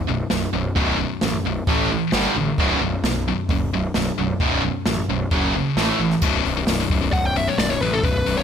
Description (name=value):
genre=heavy metal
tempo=132 BPM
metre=4/4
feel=straight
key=B minor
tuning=A4 = 441 Hz
part: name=distorted electric guitar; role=riff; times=0.0-6.2 s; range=B1 to A3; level=-25 LUFS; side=right 11 dB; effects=overdrive
part: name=high-gain distorted guitar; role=riff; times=0.0-8.4 s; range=B1 to A3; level=-24 LUFS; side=left 10 dB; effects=distortion
part: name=fuzz picked electric bass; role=bass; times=0.1-8.4 s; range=B0 to B1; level=-25 LUFS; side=equal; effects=overdrive
part: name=jazz brush drum kit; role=drums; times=0.3-8.4 s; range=crash cymbal, hi-hat, kick drum, snare drum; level=-25 LUFS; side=equal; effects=none
part: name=high-gain lead guitar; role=melody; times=7.1-8.4 s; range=A4 to G5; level=-22 LUFS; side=left 1 dB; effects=distortion
room=little or no reverb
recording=none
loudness=-18 LUFS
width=side -8 dB against mid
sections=0.0-6.2 A section; 6.2-8.4 B section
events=lead electric guitar solo 6.2-8.4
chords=0.0 B5; 1.7 A5; 2.1 G5; 2.6 B5; 5.3 F#5; 5.8 A5; 6.2 B5